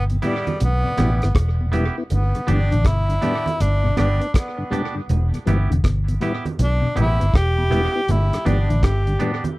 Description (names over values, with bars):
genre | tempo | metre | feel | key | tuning
roots reggae | 80 BPM | 4/4 | swing 65% on 16ths | G major | A4 = 440 Hz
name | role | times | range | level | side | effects
breathy tenor saxophone | melody | 0.0-9.2 s | G3 to G4 | -25 LUFS | equal | tape echo
mellow electric guitar | arpeggios | 0.0-9.4 s | A2 to E3 | -27 LUFS | left 3 dB | none
vintage muted fingered electric bass | bass | 0.0-9.2 s | E1 to B1 | -19 LUFS | equal | none
mellow tonewheel organ | accompaniment | 0.1-9.3 s | E2 to E4 | -26 LUFS | left 1 dB | slow rotary speaker, tube saturation
cloth-damped thuddy drum kit | drums | 0.1-9.6 s | hi-hat, kick drum, rim click | -22 LUFS | equal | tape echo
twangy electric guitar | accompaniment | 0.2-9.4 s | B3 to G4 | -30 LUFS | right 3 dB | tape echo
congas | percussion | 0.2-9.6 s | none | -28 LUFS | right 4 dB | none
room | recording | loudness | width
little or no reverb | dry, close 1970s-style studio recording | -17 LUFS | side -20 dB against mid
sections
0.0-9.6 A section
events
tenor saxophone solo 0.0-9.6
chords
0.0 Em; 2.1 G; 5.1 Em; 8.1 G